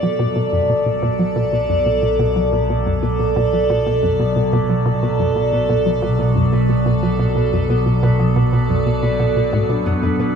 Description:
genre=ambient, sequencer-driven space music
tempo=90 BPM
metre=4/4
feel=straight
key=B minor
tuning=A4 = 440 Hz
part: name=evolving wavetable pad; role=sustained chords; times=0.0-10.4 s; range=B2 to D5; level=-17 LUFS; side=right 1 dB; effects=phaser, built-in reverb
part: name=concert harp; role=arpeggios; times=0.0-10.4 s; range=B3 to B4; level=-32 LUFS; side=left 2 dB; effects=auto-pan, ping-pong delay
part: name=resonant blip pluck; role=riff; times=0.0-10.3 s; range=F#2 to F#3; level=-20 LUFS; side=equal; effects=chorus, ping-pong delay
part: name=analog drone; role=bass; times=1.0-10.3 s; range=B1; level=-26 LUFS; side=equal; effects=chorus
room=wet cathedral reverb, RT60 7.3 s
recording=dreamy mix soaked in reverb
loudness=-15 LUFS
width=side -6 dB against mid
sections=0.0-10.4 A section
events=fade-in on harp 0.0-10.4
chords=0.0 Bm7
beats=0.36 1.03 1.70 | 2.36 3.03 3.69 4.36 | 5.03 5.70 6.36 7.03 | 7.70 8.36 9.03 9.70

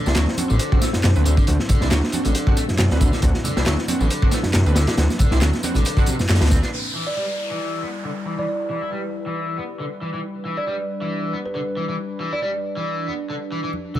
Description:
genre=breakbeat, breaks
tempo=137 BPM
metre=4/4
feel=swing 55% on 16ths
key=E minor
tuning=A4 = 441 Hz
part: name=phased analog pad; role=sustained chords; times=0.0-14.0 s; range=F#3 to C5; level=-31 LUFS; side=equal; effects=phaser, chorus, sidechain pumping
part: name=overdriven semi-hollow guitar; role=riff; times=0.0-14.0 s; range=C3 to E4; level=-28 LUFS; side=left 1 dB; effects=tube saturation, vintage 12-bit sampler grit, low-pass filter
part: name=orchestra-hit-like synth stab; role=stabs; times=0.1-6.5 s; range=C4 to B4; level=-27 LUFS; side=right 2 dB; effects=built-in reverb, ping-pong delay
part: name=detuned saw bass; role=bass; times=0.1-6.6 s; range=A1 to F#2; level=-18 LUFS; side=equal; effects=tube saturation
part: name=crunchy breakbeat drum kit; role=drums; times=0.1-6.7 s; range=hi-hat, kick drum, snare drum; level=-20 LUFS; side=equal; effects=none
part: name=electronic tambourine and handclaps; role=drums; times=0.1-6.7 s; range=none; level=-30 LUFS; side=right 2 dB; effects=low-pass filter on perc, low-pass filter on snare
part: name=congas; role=percussion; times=0.4-6.2, 13.7-14.0 s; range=none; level=-30 LUFS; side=right 1 dB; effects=none
part: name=downlifter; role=sound effects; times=6.7-10.2 s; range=none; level=-32 LUFS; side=left 1 dB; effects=none
part: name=kalimba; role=melody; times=7.1-12.5 s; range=B4 to D5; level=-29 LUFS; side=right 2 dB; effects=AM radio sound, ping-pong delay
room=small room ambience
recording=none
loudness=-19 LUFS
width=side -13 dB against mid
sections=0.0-6.7 A section; 6.7-14.0 B section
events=band accent 6.3; filter sweep on overdriven electric guitar 6.7-14.0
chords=0.0 D7; 6.7 Em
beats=0.16 0.60 1.04 | 1.48 1.92 2.35 2.79 | 3.23 3.67 4.11 4.54 | 4.98 5.42 5.86 6.29 | 6.73 7.17 7.61 8.05 | 8.48 8.92 9.36 9.80 | 10.24 10.67 11.11 11.55 | 11.99 12.43 12.86 13.30 | 13.74

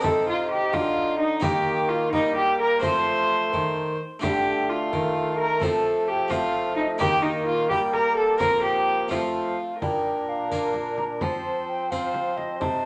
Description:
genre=classical, renaissance-style consort dance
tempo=86 BPM (dotted quarters)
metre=6/8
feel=straight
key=unclear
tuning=A4 = 440 Hz
part: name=bright baroque flute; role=melody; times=0.0-12.9 s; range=Eb5 to C6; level=-32 LUFS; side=equal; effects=none
part: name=rich viola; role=second line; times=0.0-12.9 s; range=Eb4 to C5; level=-27 LUFS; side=equal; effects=none
part: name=harpsichord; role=accompaniment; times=0.0-12.9 s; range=Bb2 to Eb5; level=-36 LUFS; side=equal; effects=none
part: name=warm bassoon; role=accompaniment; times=0.0-12.9 s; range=A3 to Eb4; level=-31 LUFS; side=equal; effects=none
part: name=warm bassoon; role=bass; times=0.0-12.9 s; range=Bb2 to G3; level=-34 LUFS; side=equal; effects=none
part: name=frame drum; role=percussion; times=0.0-12.8 s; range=none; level=-36 LUFS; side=equal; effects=none
room=moderate large studio reverb, RT60 0.8 s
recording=none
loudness=-24 LUFS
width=mono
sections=0.0-9.8 A section; 9.8-12.9 B section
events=none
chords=0.0 Cm; 1.4 Eb; 2.8 F; 4.2 Dm; 5.6 F; 7.0 Eb; 8.4 Fsus4; 9.1 F; 9.8 Bb; 11.2 F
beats=| 0.04 0.74 | 1.43 2.12 | 2.83 3.53 | 4.23 4.93 | 5.63 6.32 | 7.01 7.71 | 8.41 9.11 | 9.82 10.51 | 11.21 11.91 | 12.60

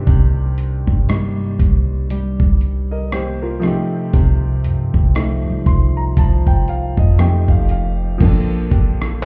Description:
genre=contemporary R&B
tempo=59 BPM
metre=4/4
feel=swing 58% on 16ths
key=unclear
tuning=A4 = 440 Hz
part: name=clear concert grand piano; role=accompaniment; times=0.0-9.2 s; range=Eb3 to C6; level=-26 LUFS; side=equal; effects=none
part: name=flamenco guitar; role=arpeggios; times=0.0-9.2 s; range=F2 to A4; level=-24 LUFS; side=equal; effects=none
part: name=warm 808-style bass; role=bass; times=0.0-9.2 s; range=F1 to G3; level=-20 LUFS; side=equal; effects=none
part: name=dusty soul sampler-style drum kit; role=drums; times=0.1-9.2 s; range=crash cymbal, hi-hat, kick drum, rim click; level=-19 LUFS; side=equal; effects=none
room=little or no reverb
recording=heard muffled through a wall, club reverb, EQ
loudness=-17 LUFS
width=mono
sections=0.0-8.2 A section; 8.2-9.2 B section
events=grand piano fill 5.2-8.2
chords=0.0 Cm7; 3.6 F7/C; 7.2 F7; 8.2 Bbmaj9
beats=| 0.07 1.09 2.10 3.12 | 4.14 5.15 6.17 7.19 | 8.21 9.22

